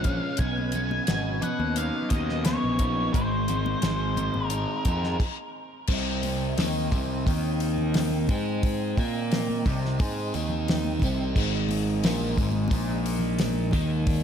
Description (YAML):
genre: psychedelic rock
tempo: 88 BPM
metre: 4/4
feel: straight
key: C minor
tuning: A4 = 440 Hz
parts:
  - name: octave-fuzz lead guitar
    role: melody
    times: 0.0-5.2 s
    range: C5 to Ab5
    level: -31 LUFS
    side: left 1 dB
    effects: distortion, ping-pong delay
  - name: mellow tonewheel organ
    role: sustained chords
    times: 0.0-14.2 s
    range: Ab3 to G5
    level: -36 LUFS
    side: right 5 dB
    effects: slow rotary speaker
  - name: crunchy overdriven guitar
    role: riff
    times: 0.0-14.2 s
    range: Ab2 to Bb4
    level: -29 LUFS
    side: left 1 dB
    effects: phaser
  - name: fuzz picked electric bass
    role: bass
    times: 0.0-14.2 s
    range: Ab1 to Bb2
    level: -29 LUFS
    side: equal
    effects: overdrive
  - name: damped 70s drum kit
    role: drums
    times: 0.0-14.2 s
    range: crash cymbal, hi-hat, kick drum, snare drum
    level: -28 LUFS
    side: equal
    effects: none
  - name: congas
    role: percussion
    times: 0.1-13.9 s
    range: none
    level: -38 LUFS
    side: left 2 dB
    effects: none
room: moderate church reverb, RT60 3.5 s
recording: dreamy mix soaked in reverb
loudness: -24 LUFS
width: side -8 dB against mid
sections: 0.0-5.9 A section; 5.9-14.2 B section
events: stop 5.2-5.9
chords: 0.4 Badd9; 3.1 Ab; 5.9 Cm; 11.4 Ab5